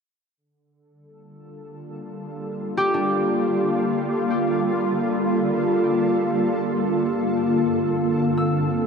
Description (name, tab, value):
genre	ambient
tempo	free time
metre	none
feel	none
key	G minor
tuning	A4 = 439 Hz
part	shimmering ambient pad	sustained chords	1.9-8.9 s	G2 to A4	-21 LUFS	equal	chorus, built-in reverb
part	concert harp	arpeggios	2.8-8.9 s	D4 to E6	-27 LUFS	equal	ping-pong delay
room	wet huge ambient reverb, RT60 7.2 s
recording	dark, warm production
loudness	-19 LUFS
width	side -6 dB against mid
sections	0.4-8.9 A section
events	none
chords	0.4 Gm9; 6.5 Bbmaj9/G